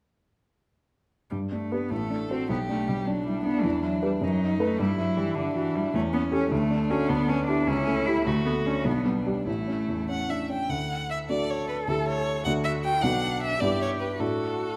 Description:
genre	quick classical-period movement for piano trio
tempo	102 BPM (dotted quarters)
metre	6/8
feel	rubato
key	G major, D major from 5.9 s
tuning	A4 = 440 Hz
part	rich cello	second line	1.3-14.8 s	D3 to A4	-31 LUFS	equal	none
part	warm grand piano	accompaniment	1.3-14.8 s	A1 to C5	-30 LUFS	equal	none
part	rich violin	melody	1.9-14.8 s	C#4 to G5	-33 LUFS	equal	none
room	moderate recital hall reverb, RT60 1.4 s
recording	none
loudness	-27 LUFS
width	mono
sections	1.3-10.7 A section; 10.7-14.8 B section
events	none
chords	1.3 G; 1.9 D7/A; 2.5 G/B; 3.6 Em; 4.2 B7/F#; 4.8 Em/G; 5.9 A7/E; 6.5 D; 7.1 Em7/D; 7.7 A7/C#; 8.3 D; 8.9 G/B; 9.5 A; 10.7 D; 11.9 A7/D; 12.5 D; 13.0 Bm; 13.6 Em/G; 14.2 D/A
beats	| 1.31 1.90 | 2.49 3.08 | 3.65 4.22 | 4.79 5.37 | 5.94 6.51 | 7.09 7.67 | 8.26 8.86 | 9.47 10.09 | 10.70 11.30 | 11.88 12.46 | 13.03 13.61 | 14.21

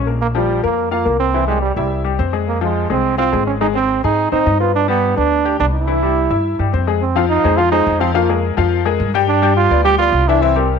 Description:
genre	latin, salsa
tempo	211 BPM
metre	4/4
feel	straight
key	F minor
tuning	A4 = 440 Hz
part	bright upright piano	accompaniment	0.0-10.8 s	E3 to Ab5	-18 LUFS	left 12 dB	none
part	upright bass	bass	0.0-10.8 s	Ab1 to Ab2	-20 LUFS	equal	none
part	bright trombone	melody	0.2-10.7 s	G3 to G4	-17 LUFS	right 8 dB	none
room	light reverb, small room ambience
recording	1960s-style stereo with parts hard left and right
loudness	-14 LUFS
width	side -6 dB against mid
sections	0.0-7.0 A section; 7.0-10.8 B section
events	none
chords	0.2 Bbsus2; 1.3 C; 2.5 Fm; 3.6 Ab; 4.7 G; 5.9 C; 7.0 Fm7; 8.2 Bb5/F; 9.3 G7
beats	| 0.20 0.49 0.77 1.05 | 1.34 1.62 1.91 2.19 | 2.48 2.76 3.04 3.33 | 3.61 3.90 4.18 4.46 | 4.75 5.03 5.32 5.60 | 5.88 6.17 6.45 6.73 | 7.02 7.30 7.58 7.87 | 8.15 8.43 8.72 9.00 | 9.28 9.57 9.85 10.13 | 10.42 10.70

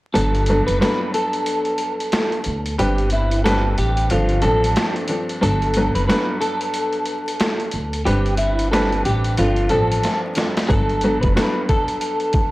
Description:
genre	hip hop, boom-bap hip-hop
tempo	91 BPM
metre	4/4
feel	swing 60% on 16ths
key	G major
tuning	A4 = 440 Hz
part	clean electric guitar	melody	0.1-12.5 s	E4 to B4	-22 LUFS	equal	ensemble chorus, high-pass filter, low-pass filter, analog delay
part	clear upright piano	accompaniment	0.1-12.5 s	G2 to B4	-23 LUFS	equal	cassette tape, high-pass filter, low-pass filter
part	upright bass	bass	0.2-11.4 s	F#1 to D2	-20 LUFS	equal	tube saturation
part	boom bap sampler-style drum kit	drums	0.2-12.5 s	hi-hat, kick drum, snare drum	-24 LUFS	equal	vintage 12-bit sampler grit
room	digital ambience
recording	dry, gritty hardware recording, vinyl crackle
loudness	-17 LUFS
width	side -19 dB against mid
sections	0.1-12.5 A section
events	kick muted 0.1-10.7; drum fill 10.0-10.7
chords	0.1 Gmaj9; 2.8 Am7/G; 4.1 G9sus4; 5.4 Gmaj9; 8.1 Am7/G; 9.4 G9sus4; 10.7 Gmaj9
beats	| 0.15 0.81 1.47 2.13 | 2.79 3.44 4.11 4.76 | 5.42 6.08 6.74 7.40 | 8.06 8.72 9.38 10.04 | 10.70 11.36 12.02

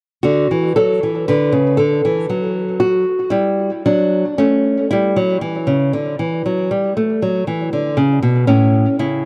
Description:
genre	classical, baroque-style dance for nylon-string guitar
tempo	58 BPM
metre	4/4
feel	rubato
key	D major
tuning	A4 = 440 Hz
part	nylon-string guitar	solo	0.2-9.3 s	A2 to B4	-16 LUFS	equal	tape echo
room	light reverb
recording	dry, close 1970s-style studio recording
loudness	-17 LUFS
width	mono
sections	0.2-9.3 A section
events	none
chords	0.2 D; 4.4 A; 6.4 N.C.; 8.5 A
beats	| 0.23 1.26 2.29 3.32 | 4.37 5.41 6.43 7.46 | 8.48

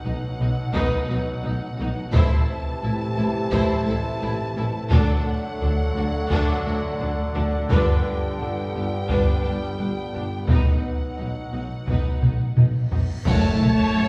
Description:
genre	cinematic, epic orchestral film score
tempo	86 BPM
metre	4/4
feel	straight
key	unclear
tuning	A4 = 440 Hz
part	warm symphonic violin section	melody	0.0-14.1 s	F#5 to A5	-37 LUFS	equal	none
part	clear symphonic viola section	accompaniment	0.0-14.1 s	D4 to C#5	-36 LUFS	equal	none
part	mellow French horn section	sustained chords	0.0-14.1 s	B2 to E4	-34 LUFS	equal	none
part	mellow trombone section	sustained chords	0.0-14.1 s	B2 to C#4	-34 LUFS	equal	none
part	dark symphonic cello section	bass	0.0-14.1 s	D2 to A3	-31 LUFS	equal	none
part	warm symphonic double bass section	bass	0.0-14.1 s	F#1 to D2	-31 LUFS	equal	none
part	warm symphonic violin section	second line	0.1-14.0 s	A3 to C#5	-35 LUFS	equal	none
part	mellow tuba	bass	0.1-14.1 s	F#1 to D2	-33 LUFS	equal	none
part	taiko ensemble	drums	0.7-13.9 s	none	-24 LUFS	equal	none
part	cymbal swell, clash cymbals and concert bass drum	percussion	10.5-14.1 s	none	-34 LUFS	equal	none
part	reverse cymbal and impact	sound effects	13.0-14.1 s	none	-39 LUFS	equal	none
part	timpani	percussion	13.3-14.1 s	F#2	-31 LUFS	equal	none
room	wet scoring stage reverb, RT60 1.7 s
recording	heard from further back in the room, small room ambience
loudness	-23 LUFS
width	mono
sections	0.0-13.3 A section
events	drum fill 12.2-13.3; reverse cymbal 13.0; band accent 13.3-14.0; impact 13.3-14.1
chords	0.0 B; 2.1 Am; 4.9 D; 7.7 G; 10.5 B; 13.3 F#m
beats	0.05 0.75 1.44 | 2.14 2.83 3.53 4.22 | 4.92 5.62 6.31 7.01 | 7.70 8.40 9.10 9.79 | 10.49 11.18 11.88 12.57 | 13.27 13.96

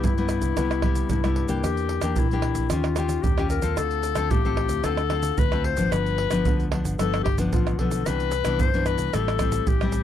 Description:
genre	samba and choro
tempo	112 BPM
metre	4/4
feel	straight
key	C major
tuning	A4 = 440 Hz
part	breathy clarinet	second line	0.0-10.0 s	E4 to C5	-27 LUFS	left 12 dB	none
part	nylon-string guitar	accompaniment	0.0-10.0 s	G2 to A4	-28 LUFS	left 3 dB	none
part	fingered electric bass with an envelope filter	bass	0.0-10.0 s	G1 to Bb2	-28 LUFS	right 1 dB	none
part	tube shaker, surdo, pandeiro and tamborim	percussion	0.0-10.0 s	none	-25 LUFS	right 3 dB	none
room	light reverb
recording	dry, close 1970s-style studio recording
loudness	-21 LUFS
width	side -10 dB against mid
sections	0.0-10.0 A section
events	none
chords	0.0 Cmaj7; 1.6 Em7b5; 2.7 Eb9; 3.8 Dm7; 5.9 G7; 8.1 Cmaj9; 9.1 Am7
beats	0.04 0.57 1.10 | 1.64 2.18 2.71 3.25 | 3.78 4.32 4.85 5.39 | 5.92 6.46 7.00 7.53 | 8.07 8.60 9.14 9.67

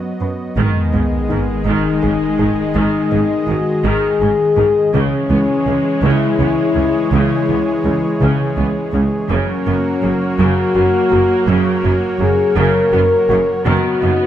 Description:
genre	cinematic, hybrid orchestral and electronic film score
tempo	55 BPM (dotted quarters)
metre	6/8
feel	straight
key	G# minor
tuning	A4 = 440 Hz
part	warm analog pad	sustained chords	0.0-14.3 s	D#3 to D#5	-21 LUFS	right 1 dB	chorus
part	glassy wavetable pluck	arpeggios	0.0-14.2 s	C#3 to B4	-24 LUFS	equal	chorus, tape echo
part	clear studio cello section	bass	0.2-14.1 s	C#2 to G#2	-22 LUFS	right 2 dB	none
part	clear symphonic viola section	accompaniment	0.6-14.3 s	C#3 to B3	-23 LUFS	right 1 dB	none
part	mellow French horn section	sustained chords	0.6-14.3 s	B3 to A#4	-17 LUFS	left 4 dB	none
part	rich symphonic double bass section	bass	0.6-14.1 s	F#1 to C#2	-21 LUFS	right 3 dB	none
part	sub drop	sound effects	0.6-2.8 s	none	-21 LUFS	equal	none
room	moderate scoring stage reverb, RT60 1.8 s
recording	close, detailed microphones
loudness	-13 LUFS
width	side -11 dB against mid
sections	0.6-14.3 A section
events	impact 0.6-2.8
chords	0.0 B/F#; 0.6 G#m; 4.9 C#m; 9.3 F#; 13.7 B/F#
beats	| 0.57 1.66 | 2.75 3.84 | 4.93 6.03 | 7.12 8.21 | 9.30 10.39 | 11.48 12.57 | 13.66

